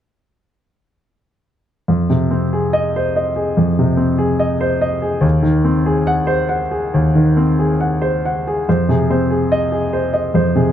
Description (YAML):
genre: neoclassical minimalist piano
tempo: 71 BPM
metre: 4/4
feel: rubato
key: F minor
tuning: A4 = 438 Hz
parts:
  - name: clear grand piano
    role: solo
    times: 1.9-10.7 s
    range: Eb2 to Gb5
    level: -14 LUFS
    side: equal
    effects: none
room: little or no reverb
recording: close, detailed microphones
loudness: -14 LUFS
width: side -10 dB against mid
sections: 1.9-8.7 A section; 8.7-10.7 B section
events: none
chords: 1.9 Fm7; 5.2 Ab7/Eb; 8.7 Fm7